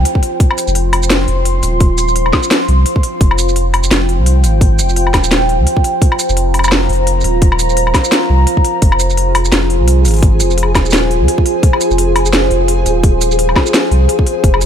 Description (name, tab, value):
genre	half-time drum and bass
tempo	171 BPM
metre	4/4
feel	swing 57% on 16ths, half-time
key	F minor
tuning	A4 = 440 Hz
part	deep dark ambient pad	sustained chords	0.0-14.7 s	F4 to C6	-16 LUFS	equal	chorus, built-in reverb, sidechain pumping
part	saturated sub bass	bass	0.0-14.7 s	Eb1 to D2	-13 LUFS	equal	none
part	drum and bass drum kit	drums	0.1-14.7 s	hi-hat, shaker, snare drum, woodblock	-16 LUFS	left 1 dB	none
part	electronic kick drum	drums	0.2-14.5 s	none	-11 LUFS	equal	none
part	flickering grainy texture	texture	9.3-14.7 s	Ab4	-21 LUFS	left 1 dB	built-in reverb
room	little or no reverb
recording	none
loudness	-10 LUFS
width	side -9 dB against mid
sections	0.0-14.7 A section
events	none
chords	0.0 Fm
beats	0.05 | 0.40 0.75 1.10 1.45 | 1.80 2.16 2.51 2.86 | 3.21 3.56 3.91 4.26 | 4.61 4.96 5.31 5.66 | 6.01 6.37 6.72 7.07 | 7.42 7.77 8.12 8.47 | 8.82 9.17 9.52 9.88 | 10.23 10.58 10.93 11.28 | 11.63 11.98 12.33 12.68 | 13.03 13.38 13.73 14.09 | 14.44